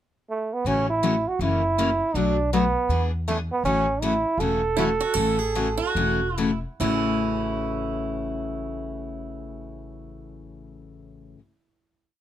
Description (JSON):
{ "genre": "acoustic string swing (jazz manouche)", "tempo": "137-161 BPM", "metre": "4/4", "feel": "swing 61% on 8ths", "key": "A major", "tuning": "A4 = 439 Hz", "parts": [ { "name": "bright trombone", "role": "melody", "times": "0.3-6.4 s", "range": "A3 to A4", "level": "-24 LUFS", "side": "right 3 dB", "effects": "none" }, { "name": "upright bass", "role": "bass", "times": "0.6-11.3 s", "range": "E1 to E2", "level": "-30 LUFS", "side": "equal", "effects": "none" }, { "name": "picked steel-string acoustic guitar", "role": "accompaniment", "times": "0.7-11.4 s", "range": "A2 to G#4", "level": "-27 LUFS", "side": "left 5 dB", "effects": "none" }, { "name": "picked swing-style acoustic guitar", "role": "second line", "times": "4.8-11.3 s", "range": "E4 to A4", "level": "-29 LUFS", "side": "right 5 dB", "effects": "none" } ], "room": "light reverb", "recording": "none", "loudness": "-22 LUFS", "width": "side -11 dB against mid", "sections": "0.0-0.7 pickup bar; 0.7-6.8 A section; 6.8-10.3 final chord", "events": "slowing down 3.6-6.8", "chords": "0.0 N.C.; 0.7 A6; 1.4 F#7; 2.1 Bm7; 2.9 E7; 3.6 A6" }